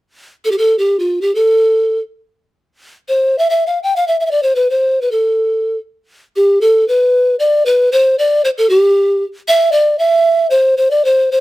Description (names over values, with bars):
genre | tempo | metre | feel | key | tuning
andean folk | free time | none | none | A minor | A4 = 444 Hz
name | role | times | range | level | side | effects
mellow hollow polished pan flute | melody | 0.4-11.4 s | F4 to G5 | -11 LUFS | equal | none
room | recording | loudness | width
light reverb | close, detailed microphones | -11 LUFS | side -17 dB against mid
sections
0.1-6.3 A section; 6.3-11.4 B section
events
none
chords
none